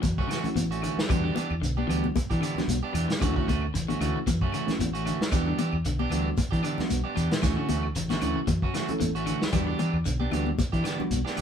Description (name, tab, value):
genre	afrobeat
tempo	114 BPM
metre	4/4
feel	swing 56% on 16ths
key	E dorian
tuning	A4 = 440 Hz
part	electric guitar at the edge of break-up	arpeggios	0.0-11.4 s	B2 to G3	-33 LUFS	left 3 dB	none
part	fingered electric bass	bass	0.0-11.4 s	A1 to E3	-30 LUFS	equal	none
part	vintage drum kit	drums	0.0-11.4 s	hi-hat, kick drum, snare drum	-30 LUFS	equal	none
part	congas	percussion	0.0-11.3 s	none	-32 LUFS	left 6 dB	none
part	shekere	percussion	0.0-11.4 s	none	-37 LUFS	right 3 dB	none
part	electric guitar at the edge of break-up	stabs	0.2-11.4 s	E3 to G4	-31 LUFS	right 4 dB	none
part	claves	percussion	0.3-11.4 s	none	-44 LUFS	left 6 dB	none
part	mellow reed electric piano	accompaniment	0.4-11.2 s	G3 to A4	-32 LUFS	right 2 dB	none
room	moderate studio ambience, RT60 0.5 s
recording	band playing live in one room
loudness	-24 LUFS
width	side -8 dB against mid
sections	0.0-11.4 A section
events	none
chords	0.0 Dmaj9; 1.1 Em7; 3.2 Dmaj9; 5.3 Em7; 7.4 Dmaj9; 9.5 Em7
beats	0.03 0.56 | 1.09 1.62 2.15 2.68 | 3.21 3.74 4.27 4.79 | 5.32 5.85 6.38 6.90 | 7.43 7.96 8.48 9.01 | 9.54 10.06 10.59 11.11